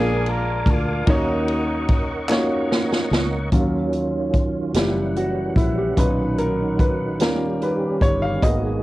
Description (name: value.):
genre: slow gospel.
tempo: 49 BPM (dotted quarters).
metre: 6/8.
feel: straight.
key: Eb minor.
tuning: A4 = 441 Hz.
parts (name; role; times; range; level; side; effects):
dark horn section; melody; 0.0-2.3 s; Gb3 to Bb4; -25 LUFS; left 1 dB; cassette tape.
warm upright piano; accompaniment; 0.0-8.8 s; Bb2 to F5; -23 LUFS; equal; cassette tape.
tonewheel organ; sustained chords; 0.0-8.8 s; Eb3 to D6; -26 LUFS; right 2 dB; fast rotary speaker, chorus vibrato, cassette tape.
fingered electric bass; bass; 0.0-8.8 s; Gb1 to Eb2; -26 LUFS; equal; none.
swinging big-band drum kit; drums; 0.3-8.6 s; hi-hat, kick drum, ride cymbal, snare drum; -21 LUFS; equal; none.
group handclap; percussion; 2.3-2.7 s; none; -31 LUFS; left 2 dB; none.
mellow French horn section; sustained chords; 3.5-8.8 s; Cb3 to Db5; -32 LUFS; right 1 dB; none.
room: light reverb, studio reverb.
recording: home recording on cassette.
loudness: -18 LUFS.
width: side -17 dB against mid.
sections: 0.0-3.5 A section; 3.5-8.8 B section.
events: drum fill 2.3-3.5; upright piano solo 3.5-8.8.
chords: 0.0 Bb7; 1.1 Ebm7; 3.5 Ebm9; 4.8 Gb7b9; 6.0 Bmaj7; 7.2 Eb7.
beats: | 1.07 2.30 | 3.52 4.75 | 5.98 7.20 | 8.43.